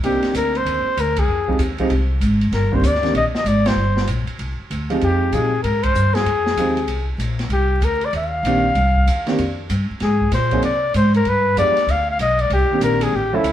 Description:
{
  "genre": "jazz, small-group swing and bop",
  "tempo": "192 BPM",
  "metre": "4/4",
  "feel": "swing 63% on 8ths",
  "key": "C minor",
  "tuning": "A4 = 440 Hz",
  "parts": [
    { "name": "warm flugelhorn", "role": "melody", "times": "0.0-13.5 s", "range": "E4 to F5", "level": "-19 LUFS", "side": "left 2 dB", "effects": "none" },
    { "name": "warm concert grand piano", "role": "accompaniment", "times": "0.0-13.4 s", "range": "Eb3 to A4", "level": "-22 LUFS", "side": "right 2 dB", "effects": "none" },
    { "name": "upright bass", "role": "bass", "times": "0.0-13.5 s", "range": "G1 to Bb2", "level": "-20 LUFS", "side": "equal", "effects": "none" },
    { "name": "open jazz drum kit", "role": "drums", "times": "0.0-13.5 s", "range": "hi-hat, kick drum, ride cymbal, snare drum", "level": "-27 LUFS", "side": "equal", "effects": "none" }
  ],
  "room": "moderate stone room reverb, RT60 1.1 s",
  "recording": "band playing live in one room, vinyl crackle",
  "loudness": "-16 LUFS",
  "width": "side -11 dB against mid",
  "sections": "0.0-13.5 A section",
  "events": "band accent 1.1, 3.6, 5.8",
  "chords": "0.0 Cm9; 1.3 Fm9; 2.5 Cm9; 5.0 Fm9; 7.5 Cm9; 10.0 Ab; 11.3 G7b9; 12.5 Cm9"
}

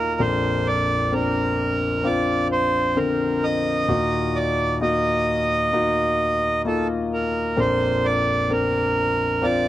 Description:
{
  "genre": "pop ballad",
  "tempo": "65 BPM",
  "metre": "4/4",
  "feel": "straight",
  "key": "Bb major",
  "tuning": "A4 = 435 Hz",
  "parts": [
    { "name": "accordion", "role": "melody", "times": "0.0-9.7 s", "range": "A4 to Eb5", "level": "-22 LUFS", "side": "right 2 dB", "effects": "none" },
    { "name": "warm concert grand piano", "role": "accompaniment", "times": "0.0-9.7 s", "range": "Bb1 to Bb4", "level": "-22 LUFS", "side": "left 2 dB", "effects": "none" }
  ],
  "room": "light reverb",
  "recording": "dry, close 1970s-style studio recording",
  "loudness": "-19 LUFS",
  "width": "side -14 dB against mid",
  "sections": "0.0-9.7 A section",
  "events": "none",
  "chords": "0.2 Bbadd9; 3.9 Ebm; 7.6 Bbadd9"
}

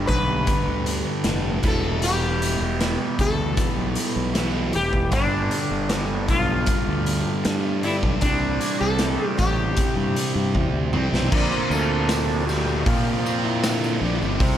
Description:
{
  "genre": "psychedelic rock",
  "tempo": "78 BPM",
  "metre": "4/4",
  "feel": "straight",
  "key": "unclear",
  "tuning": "A4 = 440 Hz",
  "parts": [
    { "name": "overdriven combo organ", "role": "sustained chords", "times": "0.0-14.6 s", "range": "D3 to D5", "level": "-30 LUFS", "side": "right 2 dB", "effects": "lush chorus" },
    { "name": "fuzz guitar", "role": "riff", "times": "0.0-14.6 s", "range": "E2 to D4", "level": "-26 LUFS", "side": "right 1 dB", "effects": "distortion, phaser" },
    { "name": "fuzz fingered electric bass", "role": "bass", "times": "0.0-14.6 s", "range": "E1 to Bb2", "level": "-26 LUFS", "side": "equal", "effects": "overdrive" },
    { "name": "sitar", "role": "melody", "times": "0.1-10.9 s", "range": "D4 to B4", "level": "-27 LUFS", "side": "left 2 dB", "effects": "analog delay" },
    { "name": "raw garage drum kit", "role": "drums", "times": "0.1-14.6 s", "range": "crash cymbal, hi-hat, kick drum, snare drum, toms", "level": "-25 LUFS", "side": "equal", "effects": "none" },
    { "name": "tambourine", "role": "percussion", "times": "11.5-14.3 s", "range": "none", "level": "-39 LUFS", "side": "left 5 dB", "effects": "none" }
  ],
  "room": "light reverb, small room ambience",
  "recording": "none",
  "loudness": "-20 LUFS",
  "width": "side -10 dB against mid",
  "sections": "0.0-11.3 A section; 11.3-14.6 B section",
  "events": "drum fill 10.6-11.3; transistor combo organ solo 11.3-14.6",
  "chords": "0.0 Gadd9; 1.6 Em; 5.1 Gadd9; 8.2 Cadd9; 11.3 Bbadd9"
}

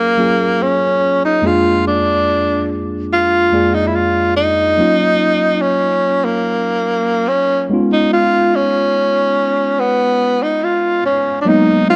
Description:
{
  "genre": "soul",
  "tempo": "72 BPM",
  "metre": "4/4",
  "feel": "straight",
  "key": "unclear",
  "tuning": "A4 = 440 Hz",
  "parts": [
    { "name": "breathy tenor saxophone", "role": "melody", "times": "0.0-12.0 s", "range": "A#3 to E#4", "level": "-16 LUFS", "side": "equal", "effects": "none" },
    { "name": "tine electric piano", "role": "accompaniment", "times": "0.0-12.0 s", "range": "E#2 to D5", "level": "-20 LUFS", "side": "equal", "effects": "none" }
  ],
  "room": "light reverb, small room ambience",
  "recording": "none",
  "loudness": "-15 LUFS",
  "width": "mono",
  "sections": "0.0-11.5 A section",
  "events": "none",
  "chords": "0.0 F#maj9; 1.4 A#7/E#; 4.8 D#m9; 7.7 C#7"
}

